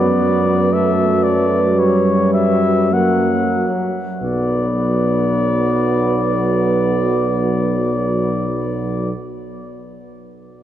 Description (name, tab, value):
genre	classical, hymn-like piece for brass band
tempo	44-61 BPM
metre	4/4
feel	rubato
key	B minor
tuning	A4 = 437 Hz
part	clear cornet	melody	0.0-9.1 s	C#5 to F#5	-21 LUFS	left 4 dB	none
part	dark French horn section	second line	0.0-9.1 s	A#4 to B4	-23 LUFS	right 5 dB	none
part	clear trombone section	accompaniment	0.0-9.1 s	F#3 to B3	-21 LUFS	equal	none
part	dark euphonium	accompaniment	0.0-9.1 s	F#3 to A#3	-24 LUFS	right 3 dB	none
part	warm tuba	bass	0.0-9.1 s	B1 to F#2	-20 LUFS	equal	none
room	wet cathedral reverb, RT60 5.0 s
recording	worn, warbling old tape, cassette tape, warbly pitch drift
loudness	-14 LUFS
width	side -11 dB against mid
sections	0.0-4.2 A section; 4.2-9.0 B section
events	slowing down 0.0-4.2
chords	0.0 Bm/F#; 1.8 F#7b9; 4.2 Bm